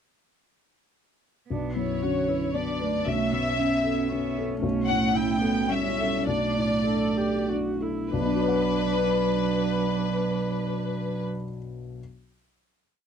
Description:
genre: neoclassical piano and strings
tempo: 93-117 BPM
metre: 3/4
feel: rubato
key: B minor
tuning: A4 = 441 Hz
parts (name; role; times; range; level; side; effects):
- dark cello; second line; 1.5-11.2 s; F#3 to C#4; -29 LUFS; right 7 dB; none
- dark viola; accompaniment; 1.5-11.2 s; B3 to A4; -32 LUFS; right 4 dB; none
- felt-muted upright piano; accompaniment; 1.5-12.0 s; B1 to F#5; -30 LUFS; left 5 dB; none
- warm chamber violin section; melody; 1.8-11.2 s; B4 to G5; -28 LUFS; left 4 dB; none
room: light reverb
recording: dry, close 1970s-style studio recording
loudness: -23 LUFS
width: side -8 dB against mid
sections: 1.5-8.1 theme; 8.1-12.0 final chord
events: slowing down 3.9-8.1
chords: 1.5 Bmadd9; 3.1 Aadd9/B; 4.6 A7/B; 6.3 Dsus2/B; 8.1 Bmadd9

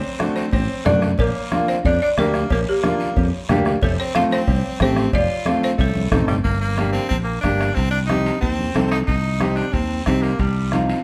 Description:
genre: latin, cumbia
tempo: 183 BPM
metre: 4/4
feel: straight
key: G minor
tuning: A4 = 440 Hz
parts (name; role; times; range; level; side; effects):
- folk marimba with hard mallets; melody; 0.0-6.4 s; G4 to F5; -26 LUFS; equal; none
- edgy tenor saxophone; second line; 0.0-10.7 s; G3 to F4; -29 LUFS; equal; none
- clear upright piano; accompaniment; 0.2-11.0 s; A3 to A4; -25 LUFS; equal; none
- bombo; percussion; 0.2-10.9 s; none; -27 LUFS; equal; none
- congas; percussion; 0.2-10.9 s; none; -30 LUFS; equal; none
- guiro; percussion; 0.2-11.0 s; none; -39 LUFS; equal; none
- fingered electric bass; bass; 0.5-10.9 s; F1 to F#2; -25 LUFS; equal; none
- cowbell and timbales; percussion; 0.5-11.0 s; none; -35 LUFS; equal; none
room: moderate stone room reverb, RT60 1.0 s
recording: band playing live in one room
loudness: -20 LUFS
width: mono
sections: 0.0-6.4 A section; 6.4-11.0 B section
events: tenor saxophone solo 6.4-11.0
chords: 0.0 D7; 1.2 Bb; 3.8 F; 6.4 Gm; 7.8 Cm

